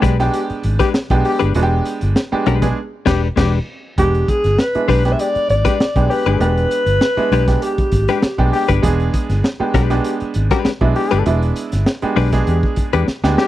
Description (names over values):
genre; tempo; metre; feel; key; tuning
funk; 99 BPM; 4/4; straight; E mixolydian; A4 = 438 Hz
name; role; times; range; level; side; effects
direct-recorded clean electric guitar; accompaniment; 0.0-13.1 s; G#3 to B4; -18 LUFS; left 8 dB; none
warm upright piano; stabs; 0.0-13.5 s; G#3 to G#4; -21 LUFS; right 3 dB; none
vintage muted fingered electric bass; bass; 0.0-13.4 s; E1 to E2; -17 LUFS; equal; none
crunchy breakbeat drum kit; drums; 0.0-13.5 s; crash cymbal, hi-hat, kick drum, snare drum; -19 LUFS; equal; none
clear trombone; second line; 0.3-13.5 s; G4; -22 LUFS; left 6 dB; none
dark alto saxophone; melody; 4.0-8.5 s; G4 to E5; -18 LUFS; equal; none
room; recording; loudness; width
small room ambience; dry, close 1970s-style studio recording; -14 LUFS; side -14 dB against mid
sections
0.0-4.0 A section; 4.0-13.5 A section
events
break 2.8-4.0; band accent 2.8-4.0; drum fill 13.1-13.5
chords
0.0 E7#9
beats
0.33 0.94 | 1.55 2.15 2.76 3.37 | 3.98 4.58 5.19 5.80 | 6.41 7.01 7.62 8.23 | 8.83 9.44 10.05 10.65 | 11.26 11.87 12.47 13.08